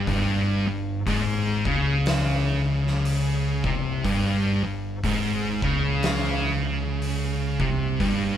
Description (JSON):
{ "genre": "stoner and doom metal", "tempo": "61 BPM", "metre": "4/4", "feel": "swing 59% on 8ths", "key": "unclear", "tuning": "A4 = 443 Hz", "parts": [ { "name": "thick fuzz guitar", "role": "riff", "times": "0.0-8.4 s", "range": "G2 to Db3", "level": "-27 LUFS", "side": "left 5 dB", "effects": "distortion" }, { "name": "thick fuzz guitar", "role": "riff", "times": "0.0-8.4 s", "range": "G2 to Db3", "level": "-26 LUFS", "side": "right 3 dB", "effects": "distortion" }, { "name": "overdriven picked electric bass", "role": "bass", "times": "0.0-8.4 s", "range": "G1 to Db2", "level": "-30 LUFS", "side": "left 1 dB", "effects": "none" }, { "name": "oversized low-tuned drum kit", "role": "drums", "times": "0.1-8.3 s", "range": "hi-hat, kick drum, snare drum", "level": "-30 LUFS", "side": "equal", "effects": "none" } ], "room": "moderate studio reverb, RT60 0.8 s", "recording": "band playing live in one room", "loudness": "-22 LUFS", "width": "side -10 dB against mid", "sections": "0.0-8.4 A section", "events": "none", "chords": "0.1 Bbm13/G (rootless)", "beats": "| 0.08 1.07 2.06 3.05 | 4.04 5.03 6.02 7.01 | 8.00" }